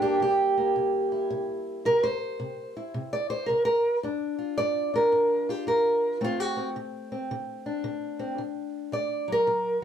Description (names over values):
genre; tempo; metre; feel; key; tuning
acoustic country blues, solo or duo; 110 BPM; 4/4; swing 64% on 8ths; unclear; A4 = 440 Hz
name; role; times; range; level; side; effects
fingerpicked old ladder-braced acoustic guitar; solo; 0.0-9.8 s; G2 to D5; -24 LUFS; right 1 dB; none
room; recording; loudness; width
light reverb; none; -24 LUFS; side -8 dB against mid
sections
0.0-9.8 A section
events
steel-string acoustic guitar solo 0.0-9.8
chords
0.0 C7; 4.0 G5; 6.2 D7